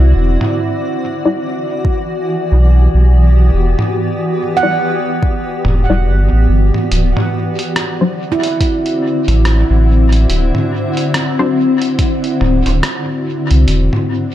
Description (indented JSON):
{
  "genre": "ambient dub",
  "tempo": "71 BPM",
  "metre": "4/4",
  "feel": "swing 59% on 16ths",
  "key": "E minor",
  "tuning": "A4 = 440 Hz",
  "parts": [
    { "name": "granular cloud pad", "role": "sustained chords", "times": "0.0-14.3 s", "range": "D3 to D5", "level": "-17 LUFS", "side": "left 2 dB", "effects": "built-in reverb" },
    { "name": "handpan", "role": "arpeggios", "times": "0.0-10.2 s", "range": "E4 to F#5", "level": "-21 LUFS", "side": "right 5 dB", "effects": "dub echo" },
    { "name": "warm sub bass", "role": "bass", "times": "0.0-13.9 s", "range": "D1 to C2", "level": "-10 LUFS", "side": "equal", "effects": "none" },
    { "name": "lo-fi sampler-style drum kit", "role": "drums", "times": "0.4-14.1 s", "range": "hi-hat, rim click, toms", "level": "-20 LUFS", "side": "right 1 dB", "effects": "dub echo" },
    { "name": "filtered dub chord stab", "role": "stabs", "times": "1.3-11.6 s", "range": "F#3 to D5", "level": "-20 LUFS", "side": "left 2 dB", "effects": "wide subtle chorus, dub echo" },
    { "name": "electronic kick drum", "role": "drums", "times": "1.8-12.2 s", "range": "none", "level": "-15 LUFS", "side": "equal", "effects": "overdrive" }
  ],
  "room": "light reverb",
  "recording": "none",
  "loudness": "-12 LUFS",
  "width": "side -12 dB against mid",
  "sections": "0.0-14.3 A section",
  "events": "filter sweep on synth stab 0.0-14.3",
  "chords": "0.2 Em7; 6.9 D7; 13.7 Em7",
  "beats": "| 0.16 1.00 1.85 2.69 | 3.54 4.38 5.23 6.07 | 6.92 7.76 8.61 9.45 | 10.30 11.14 11.99 12.83 | 13.68"
}